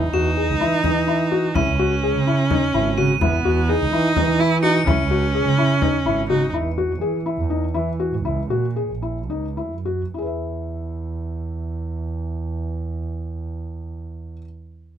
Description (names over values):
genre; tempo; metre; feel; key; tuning
contemporary instrumental, chamber music in an uneven meter; 206-253 BPM (eighths); 7/8; straight; E lydian; A4 = 439 Hz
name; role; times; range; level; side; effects
clear viola; second line; 0.0-6.5 s; B3 to E4; -22 LUFS; right 2 dB; none
felt-muted upright piano; arpeggios; 0.0-14.4 s; D#4 to E5; -23 LUFS; left 4 dB; none
warm double bass; bass; 0.0-14.3 s; G#1 to E3; -23 LUFS; right 3 dB; none
crotales; texture; 0.1-5.1 s; C#7 to E7; -30 LUFS; right 1 dB; none
frame drum; percussion; 0.8-6.0 s; none; -24 LUFS; left 2 dB; none
room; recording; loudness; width
little or no reverb; close, detailed microphones; -19 LUFS; side -9 dB against mid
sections
0.0-6.5 A section; 6.5-10.1 B section; 10.1-14.2 C section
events
slowing down 6.5-10.1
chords
0.0 N.C.; 1.6 C#madd9; 3.2 E5; 4.9 C#m; 6.5 E; 8.2 C#m; 10.1 E